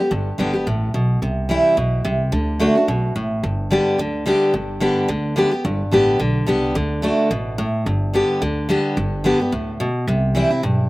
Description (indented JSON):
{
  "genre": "bluegrass",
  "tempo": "217 BPM",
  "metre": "4/4",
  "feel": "swing 55% on 8ths",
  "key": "G major",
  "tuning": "A4 = 439 Hz",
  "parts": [
    { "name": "picked steel-string acoustic guitar", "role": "accompaniment", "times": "0.0-10.9 s", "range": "G2 to G4", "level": "-18 LUFS", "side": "equal", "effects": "none" },
    { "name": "upright bass", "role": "bass", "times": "0.1-10.9 s", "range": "G1 to D2", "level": "-23 LUFS", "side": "equal", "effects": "none" }
  ],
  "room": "little or no reverb",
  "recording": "recorded outdoors, with no room sound",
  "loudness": "-17 LUFS",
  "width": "side -19 dB against mid",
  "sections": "0.0-4.5 A section; 4.5-10.9 A section",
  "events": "none",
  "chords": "0.0 G; 1.2 C; 2.3 D; 3.4 G; 6.8 D; 7.9 G; 10.1 C",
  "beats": "| 0.11 0.39 0.66 0.94 | 1.22 1.50 1.77 2.05 | 2.33 2.60 2.88 3.16 | 3.43 3.71 3.99 4.26 | 4.54 4.82 5.09 5.37 | 5.65 5.92 6.20 6.48 | 6.75 7.03 7.31 7.59 | 7.86 8.14 8.42 8.69 | 8.97 9.25 9.52 9.80 | 10.08 10.35 10.63"
}